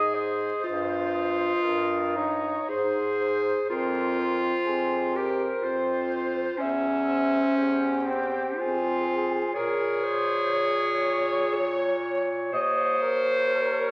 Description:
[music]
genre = classical, lyrical piece for single-reed quartet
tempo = 62 BPM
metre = 3/4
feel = rubato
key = unclear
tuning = A4 = 440 Hz
[part]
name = warm clarinet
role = melody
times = 0.0-13.9 s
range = C5 to Eb5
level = -33 LUFS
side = equal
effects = none
[part]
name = warm alto saxophone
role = second line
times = 0.0-13.9 s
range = G4 to E5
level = -33 LUFS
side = equal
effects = none
[part]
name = bright clarinet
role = accompaniment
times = 0.0-13.9 s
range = C4 to Db5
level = -29 LUFS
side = equal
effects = none
[part]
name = clear bass clarinet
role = bass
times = 0.0-13.9 s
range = Eb2 to Bb2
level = -36 LUFS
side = equal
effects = none
[sound]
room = wet recital hall reverb, RT60 1.3 s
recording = very old 78 rpm record, vinyl crackle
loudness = -26 LUFS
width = mono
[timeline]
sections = 0.0-13.9 A section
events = none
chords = 0.0 Ab5; 0.6 Eb/G; 2.7 Ab; 3.7 F5; 6.6 C/E; 8.6 Fm; 9.5 Bbm7; 12.5 Eb7(no3)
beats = | 0.64 1.63 2.70 | 3.69 4.66 5.62 | 6.58 7.55 8.58 | 9.54 10.50 11.54 | 12.52 13.50

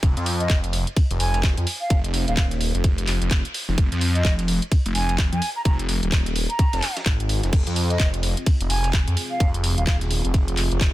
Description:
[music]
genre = bass house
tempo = 128 BPM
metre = 4/4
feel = swing 60% on 16ths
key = F minor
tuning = A4 = 440 Hz
[part]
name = phased detuned saw bass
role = bass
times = 0.0-10.9 s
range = Eb1 to F2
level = -23 LUFS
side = equal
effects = phaser, tube saturation, sidechain pumping
[part]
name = dusty soul sampler-style drum kit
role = drums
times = 0.0-10.9 s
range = hi-hat, ride cymbal, snare drum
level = -38 LUFS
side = right 4 dB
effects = none
[part]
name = electronic kick drum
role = drums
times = 0.0-10.9 s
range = none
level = -19 LUFS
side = equal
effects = none
[part]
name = garage drum kit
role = drums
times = 0.0-10.9 s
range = crash cymbal, handclaps, hi-hat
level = -28 LUFS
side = equal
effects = none
[part]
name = hollow concert flute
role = melody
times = 0.4-10.0 s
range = Eb5 to Bb5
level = -30 LUFS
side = right 1 dB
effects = tape echo
[part]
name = dark analog pad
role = sustained chords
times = 7.5-10.9 s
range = C4 to Ab4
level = -33 LUFS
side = right 1 dB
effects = chorus, sidechain pumping
[sound]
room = digital ambience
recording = dense, heavily limited modern master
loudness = -19 LUFS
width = side -16 dB against mid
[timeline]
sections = 0.0-10.9 A section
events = none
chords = 0.0 Fm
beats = | 0.03 0.50 0.96 1.43 | 1.90 2.37 2.84 3.31 | 3.78 4.25 4.71 5.18 | 5.65 6.12 6.59 7.06 | 7.53 8.00 8.46 8.93 | 9.40 9.87 10.34 10.81

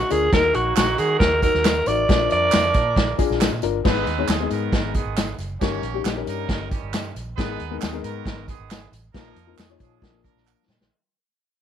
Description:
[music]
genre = uptempo 1960s-style soul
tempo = 136 BPM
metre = 4/4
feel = straight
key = Eb minor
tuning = A4 = 440 Hz
[part]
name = growling alto saxophone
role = melody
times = 0.0-3.2 s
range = Gb4 to D5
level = -20 LUFS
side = right 1 dB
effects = none
[part]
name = clear horn section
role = second line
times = 0.0-10.7 s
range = Eb3 to Db5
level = -32 LUFS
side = right 13 dB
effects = slapback echo
[part]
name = dark upright piano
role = accompaniment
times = 0.1-10.7 s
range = F3 to Db5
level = -27 LUFS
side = left 14 dB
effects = none
[part]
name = vintage muted fingered electric bass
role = bass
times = 0.1-10.9 s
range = Gb1 to Eb3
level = -29 LUFS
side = right 1 dB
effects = none
[part]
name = vintage drum kit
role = drums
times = 0.1-10.9 s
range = crash cymbal, hi-hat, kick drum, snare drum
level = -23 LUFS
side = equal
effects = none
[part]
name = tambourine and handclaps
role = percussion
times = 0.1-10.8 s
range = none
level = -33 LUFS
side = right 14 dB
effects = none
[sound]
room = light reverb, small room ambience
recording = 1960s-style stereo with parts hard left and right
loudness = -19 LUFS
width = side -9 dB against mid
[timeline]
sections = 0.0-3.8 A section; 3.8-10.9 B section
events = fade-out 3.8-10.9; drum fill 10.5-10.9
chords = 0.3 Ebm; 2.1 Bb; 3.8 Abm; 5.6 Eb7/G; 7.4 Abmadd9; 9.1 Bbsus4; 10.0 Bb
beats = | 0.33 0.77 1.21 1.65 | 2.09 2.53 2.97 3.41 | 3.85 4.29 4.73 5.17 | 5.61 6.05 6.49 6.93 | 7.37 7.81 8.26 8.70 | 9.14 9.58 10.02 10.46

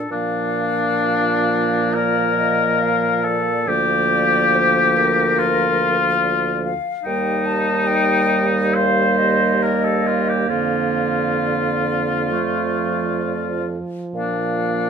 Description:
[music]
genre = classical, slow romantic movement for wind quintet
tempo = 62-74 BPM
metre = 4/4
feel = rubato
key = Bb major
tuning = A4 = 440 Hz
[part]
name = warm oboe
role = second line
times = 0.0-14.9 s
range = D4 to C5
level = -19 LUFS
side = left 3 dB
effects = none
[part]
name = warm French horn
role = accompaniment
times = 0.0-14.9 s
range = D3 to D4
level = -26 LUFS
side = right 1 dB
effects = none
[part]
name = hollow concert flute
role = melody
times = 0.1-14.9 s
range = Bb4 to A5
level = -25 LUFS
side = left 7 dB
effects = none
[part]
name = clear clarinet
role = accompaniment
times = 0.1-14.9 s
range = A3 to Bb3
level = -26 LUFS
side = right 10 dB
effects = none
[part]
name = mellow bassoon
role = bass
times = 0.1-14.9 s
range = D2 to Bb2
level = -23 LUFS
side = right 4 dB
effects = none
[sound]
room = light reverb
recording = minimal, uncompressed stereo recording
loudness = -16 LUFS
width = side -6 dB against mid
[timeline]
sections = 0.1-14.9 A section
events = none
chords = 0.1 Bb; 3.7 Bb/D; 7.0 Eb; 10.5 Bb/F; 12.3 F; 14.2 Bb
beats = | 0.11 0.99 1.93 2.80 | 3.67 4.53 5.39 6.23 | 7.05 7.87 8.75 9.62 | 10.50 11.41 12.34 13.25 | 14.15

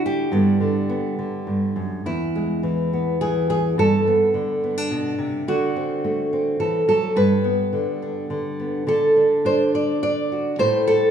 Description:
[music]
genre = folk, solo fingerstyle acoustic guitar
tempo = 106 BPM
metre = 3/4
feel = straight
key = unclear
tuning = A4 = 442 Hz
[part]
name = nylon-string guitar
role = solo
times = 0.0-11.1 s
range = E2 to D5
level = -18 LUFS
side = right 1 dB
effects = none
[sound]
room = wet scoring stage reverb, RT60 2.0 s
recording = recorded in a church or concert hall, studio ambience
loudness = -19 LUFS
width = side -8 dB against mid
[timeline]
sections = 0.0-2.1 A section; 2.1-11.1 B section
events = none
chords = 0.3 G; 2.1 E; 3.8 Gadd9; 5.5 D7; 7.2 G; 8.9 D; 10.6 Am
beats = | 0.33 0.90 1.48 | 2.07 2.64 3.22 | 3.79 4.35 4.91 | 5.47 6.04 6.59 | 7.16 7.72 8.29 | 8.87 9.45 10.03 | 10.59

